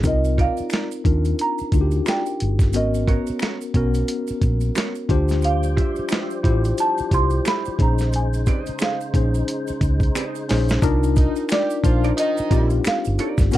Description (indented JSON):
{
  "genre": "R&B, neo-soul",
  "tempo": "89 BPM",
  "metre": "4/4",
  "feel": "swing 60% on 16ths",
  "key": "C phrygian",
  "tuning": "A4 = 440 Hz",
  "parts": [
    { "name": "mellow tine electric piano", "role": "accompaniment", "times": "0.0-13.6 s", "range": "Cb4 to C5", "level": "-24 LUFS", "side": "left 4 dB", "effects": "medium stereo tremolo, plate reverb" },
    { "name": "hollow-body short-scale fingered electric bass", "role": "bass", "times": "0.0-13.6 s", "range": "G1 to Eb2", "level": "-21 LUFS", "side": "equal", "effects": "none" },
    { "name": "dusty soul sampler-style drum kit", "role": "drums", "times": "0.0-13.6 s", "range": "hi-hat, kick drum, snare drum", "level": "-21 LUFS", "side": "equal", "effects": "none" },
    { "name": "maracas and finger snaps", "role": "percussion", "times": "0.0-13.6 s", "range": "none", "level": "-36 LUFS", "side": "equal", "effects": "none" },
    { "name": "marimba with medium mallets", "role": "melody", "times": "0.1-13.6 s", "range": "D5 to C6", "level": "-24 LUFS", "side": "right 2 dB", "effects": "slapback echo, plate reverb" },
    { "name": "vintage hollow-body jazz guitar", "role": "second line", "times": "0.4-13.4 s", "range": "Cb4 to E5", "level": "-29 LUFS", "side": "right 5 dB", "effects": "plate reverb" },
    { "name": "percussive tonewheel organ", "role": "sustained chords", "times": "5.4-10.8 s", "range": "Db3 to C5", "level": "-33 LUFS", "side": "right 1 dB", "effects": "slow rotary speaker, overdrive, chorus vibrato, plate reverb" },
    { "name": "warm horn section", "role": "stabs", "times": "11.2-12.8 s", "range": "Eb3 to G4", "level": "-31 LUFS", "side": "right 4 dB", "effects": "plate reverb" }
  ],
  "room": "light reverb",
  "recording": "dark, warm production",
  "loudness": "-18 LUFS",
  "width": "side -14 dB against mid",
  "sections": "0.0-10.8 A section; 10.8-13.6 B section",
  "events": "drum fill 10.2-10.8",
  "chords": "0.0 Cm11; 2.7 Abm11; 5.1 Dm11; 7.8 Bbm11; 10.8 Cm11",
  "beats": "| 0.04 0.71 1.39 2.06 | 2.73 3.41 4.08 4.76 | 5.43 6.11 6.78 7.45 | 8.13 8.80 9.47 10.15 | 10.82 11.50 12.17 12.85 | 13.52"
}